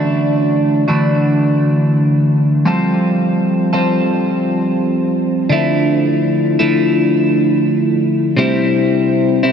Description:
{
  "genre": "rock",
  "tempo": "84 BPM",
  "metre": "4/4",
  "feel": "straight",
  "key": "unclear",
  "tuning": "A4 = 439 Hz",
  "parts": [
    { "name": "twelve-string electric guitar", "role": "solo", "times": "0.0-9.5 s", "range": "C3 to A4", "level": "-12 LUFS", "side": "equal", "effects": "phaser, analog delay" }
  ],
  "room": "wet huge ambient reverb, RT60 6.4 s",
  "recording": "dreamy mix soaked in reverb",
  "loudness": "-12 LUFS",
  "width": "side -7 dB against mid",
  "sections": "0.0-2.7 A section; 2.7-9.5 B section",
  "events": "none",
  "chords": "0.0 Dadd9; 2.7 Fadd9; 5.5 Dmadd9; 8.4 C",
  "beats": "0.50 1.22 1.94 | 2.65 3.37 4.09 4.80 | 5.52 6.23 6.94 7.66 | 8.37 9.08"
}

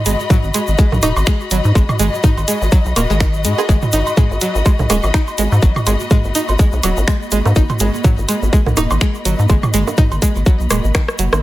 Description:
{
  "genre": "minimal techno",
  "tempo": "124 BPM",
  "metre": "4/4",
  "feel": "swing 57% on 16ths",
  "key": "G# minor",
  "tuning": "A4 = 440 Hz",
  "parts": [
    { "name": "dark symphonic string section", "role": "texture", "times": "0.0-11.4 s", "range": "F#4 to B5", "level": "-24 LUFS", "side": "left 3 dB", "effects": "sidechain pumping" },
    { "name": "string-like resonator pluck", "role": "riff", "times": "0.1-11.3 s", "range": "D#3 to G#4", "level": "-21 LUFS", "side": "right 2 dB", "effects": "chorus, vintage 12-bit sampler grit, sidechain pumping, digital delay" },
    { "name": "rubbery square bass", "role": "bass", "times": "0.1-11.4 s", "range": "D#1 to G#2", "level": "-17 LUFS", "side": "equal", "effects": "sidechain pumping" },
    { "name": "garage drum kit", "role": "drums", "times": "0.1-11.4 s", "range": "finger snaps, hi-hat, rim click", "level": "-20 LUFS", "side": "equal", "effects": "none" },
    { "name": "tube shaker", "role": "percussion", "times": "0.1-11.4 s", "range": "none", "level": "-27 LUFS", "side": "right 1 dB", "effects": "none" },
    { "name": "electronic kick drum", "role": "drums", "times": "0.3-11.1 s", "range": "none", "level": "-13 LUFS", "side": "equal", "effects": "none" },
    { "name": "electronic toms, cowbell, bongos and woodblock", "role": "percussion", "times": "0.3-11.4 s", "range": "none", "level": "-21 LUFS", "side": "right 2 dB", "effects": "overdrive, digital delay" },
    { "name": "swarming drone", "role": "texture", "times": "5.6-11.4 s", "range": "A#3", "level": "-30 LUFS", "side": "right 5 dB", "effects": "built-in reverb, sidechain pumping" }
  ],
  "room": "digital ambience",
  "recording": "none",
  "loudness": "-12 LUFS",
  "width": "side -16 dB against mid",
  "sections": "0.0-11.4 A section",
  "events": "drop 0.0-11.4; drum fill 10.7-11.4",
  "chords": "0.0 G#m",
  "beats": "0.30 0.79 1.27 | 1.75 2.24 2.72 3.21 | 3.69 4.17 4.66 5.14 | 5.62 6.11 6.59 7.08 | 7.56 8.04 8.53 9.01 | 9.49 9.98 10.46 10.95"
}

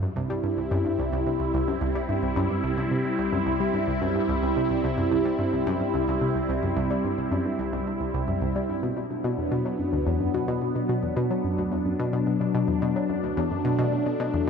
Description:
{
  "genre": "ambient, sequencer-driven space music",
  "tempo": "109 BPM",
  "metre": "4/4",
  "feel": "straight",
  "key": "C lydian",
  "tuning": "A4 = 440 Hz",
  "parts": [
    { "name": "phased analog pad", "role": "sustained chords", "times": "0.0-14.5 s", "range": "F#3 to E4", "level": "-26 LUFS", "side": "equal", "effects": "phaser, chorus" },
    { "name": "analog pluck", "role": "riff", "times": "0.0-14.5 s", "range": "C2 to G3", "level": "-27 LUFS", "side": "equal", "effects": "chorus, ping-pong delay" }
  ],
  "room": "wet huge ambient reverb, RT60 8.2 s",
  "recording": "none",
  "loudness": "-23 LUFS",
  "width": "side -6 dB against mid",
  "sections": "0.0-14.5 A section",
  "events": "none",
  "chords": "0.0 C; 8.8 Bm",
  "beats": "| 0.02 0.57 1.12 1.67 | 2.23 2.77 3.33 3.88 | 4.43 4.98 5.53 6.08 | 6.63 7.18 7.73 8.28 | 8.83 9.38 9.93 10.48 | 11.03 11.58 12.13 12.68 | 13.23 13.78 14.34"
}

